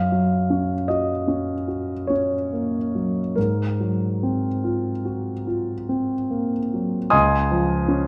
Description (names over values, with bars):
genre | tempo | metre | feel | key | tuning
classical, impressionist solo piano | 47-54 BPM | 3/4 | rubato | unclear | A4 = 440 Hz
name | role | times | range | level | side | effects
clear grand piano | solo | 0.0-8.1 s | Db2 to Eb6 | -23 LUFS | equal | none
room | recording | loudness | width
moderate scoring stage reverb, RT60 1.5 s | dark, warm production | -23 LUFS | mono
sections
0.0-7.1 A section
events
none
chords
0.0 Gbmaj7; 3.4 Ab13; 7.1 Dbadd9